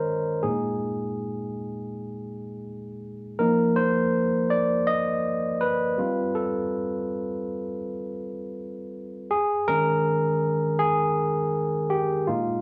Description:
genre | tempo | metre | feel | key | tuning
R&B | 81 BPM | 4/4 | swing 53% on 16ths | unclear | A4 = 438 Hz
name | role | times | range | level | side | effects
barky tine electric piano | solo | 0.0-12.6 s | Bb2 to Eb5 | -26 LUFS | equal | overdrive
room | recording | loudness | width
moderate echo chamber reverb, RT60 1.4 s, digital ambience | small room ambience | -25 LUFS | mono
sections
0.0-12.6 A section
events
tine electric piano solo 0.0-12.6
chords
0.4 Bb7sus4; 3.4 F7sus4; 6.0 G9sus4; 9.3 Eb7sus4

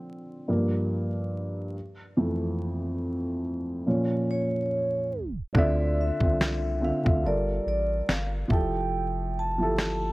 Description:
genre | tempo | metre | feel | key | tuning
lo-fi hip hop | 71 BPM | 4/4 | swing 58% on 16ths | F major | A4 = 440 Hz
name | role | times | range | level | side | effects
dark upright piano | accompaniment | 0.0-10.1 s | F2 to E5 | -28 LUFS | equal | cassette tape, low-pass filter
vibraphone with soft mallets | melody | 4.3-10.1 s | Db5 to A5 | -30 LUFS | right 1 dB | tape echo
dusty soul sampler-style drum kit | drums | 5.5-10.0 s | kick drum, snare drum | -25 LUFS | equal | none
round analog bass | bass | 5.6-10.1 s | F1 to D2 | -30 LUFS | equal | none
room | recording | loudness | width
light reverb, small room ambience | vinyl crackle, tape stop | -25 LUFS | side -20 dB against mid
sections
0.0-5.5 A section; 5.5-10.1 B section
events
upright piano solo 0.0-5.5; tape stop 5.1-5.5; hi-hats muted 5.5-10.1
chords
0.5 Gm7; 1.7 Fmaj7; 3.9 Bbm; 5.5 Dm9; 7.2 Gm9; 8.5 Fmaj9

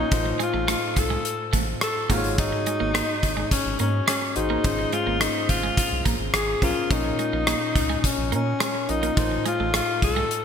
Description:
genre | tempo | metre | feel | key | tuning
1980s-style pop | 106 BPM | 4/4 | straight | Bb minor | A4 = 440 Hz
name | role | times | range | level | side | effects
breathy alto saxophone | melody | 0.0-10.4 s | Db4 to A4 | -26 LUFS | left 2 dB | shimmer reverb, ping-pong delay
bell-like tine electric piano | accompaniment | 0.0-10.4 s | Ab2 to Eb5 | -29 LUFS | left 3 dB | wide subtle chorus, shimmer reverb
twelve-string electric guitar | riff | 0.0-10.3 s | Ab3 to C4 | -32 LUFS | right 9 dB | analog chorus, shimmer reverb
round analog bass | bass | 0.0-10.2 s | Ab1 to Bb2 | -29 LUFS | right 1 dB | none
gated 80s drum kit | drums | 0.1-10.4 s | hi-hat, kick drum, rim click | -24 LUFS | equal | none
room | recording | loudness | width
moderate plate reverb, RT60 3.2 s | bright 1980s-style digital production | -21 LUFS | side -7 dB against mid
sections
0.0-10.4 A section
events
none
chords
0.1 F7/A; 2.1 Ab7sus4; 4.6 Dbmaj7/Ab; 6.9 Bbm; 9.2 F7/A

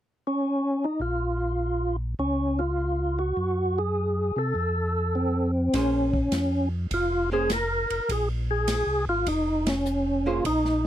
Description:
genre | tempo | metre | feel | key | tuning
soul jazz organ trio | 102 BPM | 4/4 | swing 68% on 8ths | Bb minor | A4 = 439 Hz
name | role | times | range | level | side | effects
percussive tonewheel organ | melody | 0.3-10.9 s | C4 to Bb4 | -25 LUFS | equal | slow rotary speaker, overdrive, chorus vibrato
mellow tonewheel organ | bass | 1.0-10.9 s | F1 to C3 | -28 LUFS | equal | slow rotary speaker
archtop guitar, miked and amplified | accompaniment | 5.7-10.4 s | Bb3 to C5 | -29 LUFS | right 5 dB | none
open jazz drum kit | drums | 5.7-10.9 s | hi-hat, kick drum, ride cymbal, snare drum | -33 LUFS | equal | none
room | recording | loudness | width
little or no reverb | dry, close 1970s-style studio recording | -23 LUFS | side -12 dB against mid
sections
0.0-1.0 A section; 1.0-5.7 B section; 5.7-10.9 C section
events
band accent 9.6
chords
0.0 N.C.; 1.0 Bb5; 2.2 Db; 3.4 Gbmadd9; 4.6 F; 5.7 Bbm9

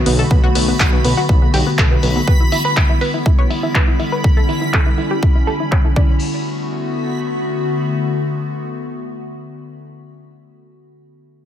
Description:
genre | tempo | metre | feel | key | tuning
progressive house | 122 BPM | 4/4 | straight | B minor | A4 = 440 Hz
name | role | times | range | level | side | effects
evolving wavetable pad | sustained chords | 0.0-10.4 s | D3 to F#4 | -21 LUFS | left 2 dB | chorus, built-in reverb, sidechain pumping
backwards swelling texture | texture | 0.2-6.2 s | B5 | -27 LUFS | right 2 dB | built-in reverb, sidechain pumping
analog pluck | arpeggios | 0.1-10.4 s | B3 to D5 | -23 LUFS | equal | chorus, sidechain pumping, dub echo
dark detuned saw bass | bass | 0.1-2.2 s | B1 | -19 LUFS | equal | tube saturation, sidechain pumping
big-room dance drum kit | drums | 0.1-6.1 s | crash cymbal, handclaps, hi-hat | -22 LUFS | left 1 dB | sidechain pumping on hats, low-pass filter on hats, sidechain pumping on perc, low-pass filter on perc, low-pass filter on snare, sidechain pumping on cymbals, low-pass filter on cymbals
electronic kick drum | drums | 0.3-6.1 s | none | -14 LUFS | equal | none
room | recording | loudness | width
light reverb | none | -14 LUFS | side -10 dB against mid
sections
0.0-6.2 A section; 6.2-10.1 B section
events
filter sweep on drum 0.0-6.2; filter sweep on synth arpeggio sound 0.0-6.2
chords
0.0 Bm7; 2.3 Em7; 6.0 Bm7

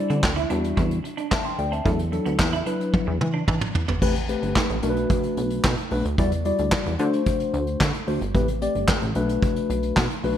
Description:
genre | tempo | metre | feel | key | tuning
early-eighties boogie funk | 111 BPM | 4/4 | straight | A dorian | A4 = 440 Hz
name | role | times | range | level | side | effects
mellow tine electric piano | accompaniment | 0.0-10.4 s | F#3 to C6 | -25 LUFS | left 2 dB | wide subtle chorus
semi-hollow electric guitar | riff | 0.1-4.0 s | A3 to E4 | -32 LUFS | right 6 dB | analog chorus
plucky analog bass | bass | 0.1-10.3 s | G1 to E3 | -26 LUFS | equal | none
vintage brush drum kit | drums | 0.1-10.4 s | crash cymbal, handclaps, hi-hat, kick drum, snare drum, toms | -24 LUFS | equal | none
room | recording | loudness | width
light reverb, studio reverb | bright 1980s-style digital production | -21 LUFS | side -10 dB against mid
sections
0.0-4.0 A section; 4.0-10.4 B section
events
drum fill 2.9-4.0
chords
0.0 D9sus4; 1.9 E9sus4; 4.0 Am9; 4.8 Bm7; 6.2 Em9; 7.0 D7; 8.3 Am9; 9.2 Bm7

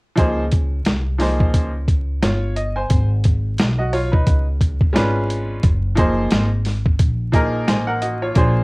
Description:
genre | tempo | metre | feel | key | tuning
hip hop, jazz-hop | 88 BPM | 4/4 | swing 57% on 16ths | Db major | A4 = 439 Hz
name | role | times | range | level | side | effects
bright concert grand piano | accompaniment | 0.2-8.6 s | F3 to Ab5 | -21 LUFS | equal | cassette tape, plate reverb
upright bass | bass | 0.2-8.6 s | Gb1 to Db2 | -21 LUFS | equal | none
boom bap sampler-style drum kit | drums | 0.2-8.5 s | hi-hat, kick drum, snare drum | -17 LUFS | equal | none
room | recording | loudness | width
light reverb | home recording on cassette, vinyl crackle | -16 LUFS | side -26 dB against mid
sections
0.2-8.6 A section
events
none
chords
0.2 Db69; 2.9 Abm; 4.3 Db7b9; 5.6 Gbmaj9

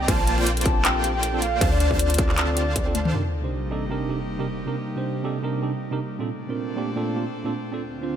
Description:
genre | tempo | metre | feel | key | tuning
future bass | 157 BPM | 4/4 | swing 55% on 16ths, half-time | C dorian | A4 = 436 Hz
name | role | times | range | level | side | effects
soft octave-layered synth lead | melody | 0.0-3.1 s | D5 to A5 | -28 LUFS | left 1 dB | chorus, phaser, sidechain pumping, ping-pong delay
airy breathy pad | sustained chords | 0.0-8.2 s | D2 to A4 | -32 LUFS | left 1 dB | chorus, sidechain pumping
supersaw stab | riff | 0.0-3.1 s | D3 to A5 | -28 LUFS | right 1 dB | sidechain pumping, low-pass filter
warm 808-style bass | bass | 0.0-3.1 s | Bb1 to D2 | -25 LUFS | equal | sidechain pumping
tine electric piano | accompaniment | 0.1-8.2 s | Bb2 to C5 | -28 LUFS | right 4 dB | analog chorus, sidechain pumping, ping-pong delay
electronic kick drum | drums | 0.1-2.8 s | none | -23 LUFS | equal | distortion
trap drum kit | drums | 0.1-3.1 s | handclaps, hi-hat, toms | -25 LUFS | left 1 dB | none
sub drop | sound effects | 3.1-4.7 s | none | -30 LUFS | equal | none
room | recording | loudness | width
light reverb, digital ambience | none | -22 LUFS | side -9 dB against mid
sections
0.0-3.1 A section; 3.1-8.2 B section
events
drop 0.0-3.1; drum fill 3.0; impact 3.1-4.7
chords
0.1 Bbmaj9; 1.6 Dm7; 3.1 Cm7; 6.2 Bbmaj9

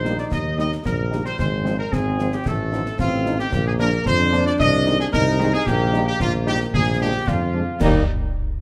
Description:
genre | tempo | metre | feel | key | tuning
military-style march for wind band | 112 BPM | 2/4 | straight | Eb major | A4 = 437 Hz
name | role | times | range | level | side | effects
dark trumpet section | melody | 0.0-8.0 s | Eb4 to Eb5 | -26 LUFS | equal | none
warm French horn section | accompaniment | 0.0-8.0 s | Eb3 to Eb4 | -30 LUFS | equal | none
mellow trombone section | sustained chords | 0.0-8.0 s | G3 to Eb4 | -29 LUFS | equal | none
mellow tuba | bass | 0.0-8.0 s | Ab1 to F2 | -25 LUFS | equal | none
concert snare drum, concert bass drum and clash cymbals | drums | 0.1-8.1 s | none | -28 LUFS | equal | none
room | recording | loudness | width
moderate scoring stage reverb, RT60 1.5 s | none | -21 LUFS | mono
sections
0.0-7.8 A section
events
none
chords
0.0 Eb; 1.4 Fm/Ab; 2.5 F7/A; 3.5 Bb; 4.6 Ab/C; 5.7 Eb/Bb; 6.7 Bb7; 7.8 Eb

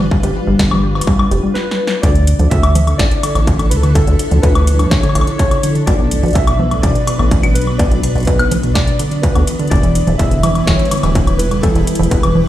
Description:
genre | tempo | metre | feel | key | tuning
IDM | 125 BPM | 4/4 | straight | D melodic minor | A4 = 440 Hz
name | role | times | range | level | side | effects
granular cloud pad | sustained chords | 0.0-12.5 s | F3 to B4 | -22 LUFS | equal | built-in reverb
warbly dusty pluck | arpeggios | 0.0-12.4 s | A2 to G4 | -19 LUFS | equal | chorus, ping-pong delay
deep acid bass | bass | 0.0-12.5 s | D1 to D2 | -14 LUFS | equal | none
electronic kick drum | drums | 0.1-12.2 s | none | -16 LUFS | equal | distortion
electro analog drum machine | drums | 0.2-12.4 s | congas, hi-hat, snare drum, woodblock | -20 LUFS | equal | overdrive
warbly lo-fi synth keys | melody | 1.5-12.5 s | A4 to E5 | -21 LUFS | left 1 dB | chorus, vintage 12-bit sampler grit, ping-pong delay
room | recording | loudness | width
digital ambience | played on a big sound system in a bare room, stone room reverb | -11 LUFS | side -13 dB against mid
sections
0.0-2.0 A section; 2.0-12.5 B section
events
drum fill 1.6-2.0; stop 1.6-2.0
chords
0.0 G7; 2.0 Dmadd9; 5.9 Bm; 9.7 Em

